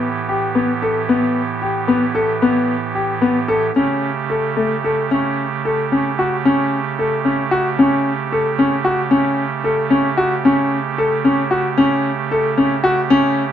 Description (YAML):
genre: contemporary instrumental, chamber music in an uneven meter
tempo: 225 BPM (eighths)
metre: 5/8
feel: straight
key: A mixolydian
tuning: A4 = 440 Hz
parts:
  - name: pipe organ, soft reed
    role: sustained chords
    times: 0.0-13.5 s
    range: A2 to G4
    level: -21 LUFS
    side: right 7 dB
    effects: none
  - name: clear concert grand piano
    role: arpeggios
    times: 0.0-13.4 s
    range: A3 to A4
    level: -16 LUFS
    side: left 2 dB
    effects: none
room: light reverb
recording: close, detailed microphones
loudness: -15 LUFS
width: side -10 dB against mid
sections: 0.0-5.1 A section; 5.1-13.5 B section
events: none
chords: 0.0 Em/A; 3.8 A7